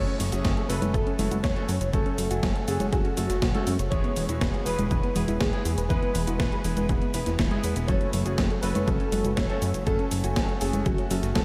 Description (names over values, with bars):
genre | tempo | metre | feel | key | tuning
italo disco | 121 BPM | 4/4 | straight | F# minor | A4 = 437 Hz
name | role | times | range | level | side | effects
dark baby grand piano | melody | 0.0-11.4 s | F#4 to C#5 | -34 LUFS | equal | ensemble chorus, analog delay, shimmer reverb
clear electric grand piano | stabs | 0.0-11.3 s | G#3 to G#5 | -36 LUFS | equal | lush chorus, shimmer reverb
chorused synth bass | bass | 0.0-11.4 s | D1 to F#2 | -31 LUFS | equal | none
soft round pluck | arpeggios | 0.1-11.4 s | E3 to C#5 | -36 LUFS | equal | chorus, diffuse ambient delay, shimmer reverb
gated 80s digital drum machine | drums | 0.1-11.4 s | cabasa, congas, hi-hat, snare drum | -33 LUFS | equal | gated reverb, gated reverb snare, overdrive
electronic kick drum | drums | 0.4-11.4 s | none | -30 LUFS | equal | none
room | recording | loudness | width
moderate huge ambient reverb, RT60 7.3 s | dreamy mix soaked in reverb | -26 LUFS | mono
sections
0.0-11.4 A section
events
none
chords
0.0 F#m; 3.9 E; 7.9 F#m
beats
0.45 0.94 1.44 | 1.93 2.43 2.93 3.42 | 3.92 4.41 4.91 5.41 | 5.90 6.40 6.89 7.39 | 7.88 8.38 8.88 9.37 | 9.87 10.36 10.86 11.36